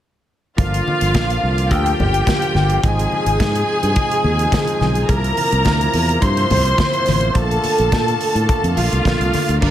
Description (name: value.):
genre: disco.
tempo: 106 BPM.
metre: 4/4.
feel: straight.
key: G dorian.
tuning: A4 = 440 Hz.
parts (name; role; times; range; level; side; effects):
clear studio string section; second line; 0.6-9.7 s; D4 to C6; -19 LUFS; equal; none.
bright tonewheel organ; sustained chords; 0.6-9.7 s; C3 to F4; -24 LUFS; right 2 dB; overdrive, slow rotary speaker.
fingered electric bass; bass; 0.6-9.7 s; G1 to Bb2; -19 LUFS; equal; none.
modern studio drum kit; drums; 0.6-9.7 s; crash cymbal, hi-hat, kick drum, snare drum; -22 LUFS; equal; none.
congas; percussion; 0.6-9.7 s; none; -24 LUFS; left 3 dB; none.
room: light reverb.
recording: none.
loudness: -14 LUFS.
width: side -11 dB against mid.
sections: 0.6-9.6 A section.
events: none.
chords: 0.6 Gm7; 2.8 Ab; 5.1 C7; 7.4 Bbmaj7.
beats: | 0.58 1.15 1.71 2.27 | 2.84 3.40 3.96 4.53 | 5.09 5.66 6.22 6.79 | 7.35 7.92 8.48 9.05 | 9.61.